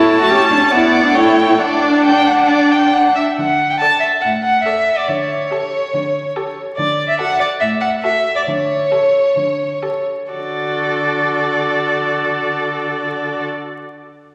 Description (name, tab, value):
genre	quick classical-period movement for string quartet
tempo	121-145 BPM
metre	4/4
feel	rubato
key	D major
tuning	A4 = 441 Hz
part	rich violin	melody	0.0-13.4 s	C#5 to A5	-19 LUFS	equal	none
part	rich violin	second line	0.0-13.4 s	A4 to G5	-22 LUFS	equal	none
part	rich viola	accompaniment	0.0-13.4 s	A3 to A4	-24 LUFS	equal	none
part	dark cello	bass	0.0-13.4 s	A2 to G4	-21 LUFS	equal	none
room	wet scoring stage reverb, RT60 2.0 s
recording	vinyl crackle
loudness	-16 LUFS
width	mono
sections	0.0-3.4 A section; 3.4-10.3 B section; 10.3-14.1 C section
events	slowing down 5.9-10.3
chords	0.0 A; 0.7 Bm; 1.1 A7; 1.6 D; 3.4 D5; 5.1 A7/D; 6.8 D; 8.5 A7/D; 10.3 D